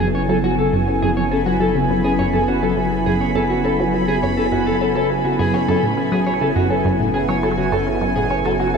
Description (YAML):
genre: ambient, sequencer-driven space music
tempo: 103 BPM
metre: 4/4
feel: straight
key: F# minor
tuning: A4 = 439 Hz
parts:
  - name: sweeping resonant pad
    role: sustained chords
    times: 0.0-8.8 s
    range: C#3 to G#5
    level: -20 LUFS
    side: equal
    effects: chorus, shimmer reverb
  - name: electric guitar at the edge of break-up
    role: arpeggios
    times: 0.0-8.8 s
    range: F#4 to C#5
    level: -22 LUFS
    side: moving between left 5 dB and right 3 dB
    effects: auto-pan, analog delay, shimmer reverb
  - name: resonant blip pluck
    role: riff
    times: 0.0-8.8 s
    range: F#2 to C#4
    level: -22 LUFS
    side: equal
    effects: phaser, analog delay
  - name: warm sub bass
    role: bass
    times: 0.0-8.8 s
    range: F#1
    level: -30 LUFS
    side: equal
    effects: none
  - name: bubbling stepped-filter texture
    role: texture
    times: 0.0-8.8 s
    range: G#5 to B5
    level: -29 LUFS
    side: equal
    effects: chorus, built-in reverb, shimmer reverb
room: wet huge ambient reverb, RT60 8.1 s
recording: none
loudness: -16 LUFS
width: side -6 dB against mid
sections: 0.0-8.8 A section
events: none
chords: 0.0 F#m7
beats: 0.44 | 1.02 1.61 2.19 2.77 | 3.35 3.94 4.52 5.10 | 5.68 6.27 6.85 7.43 | 8.02 8.60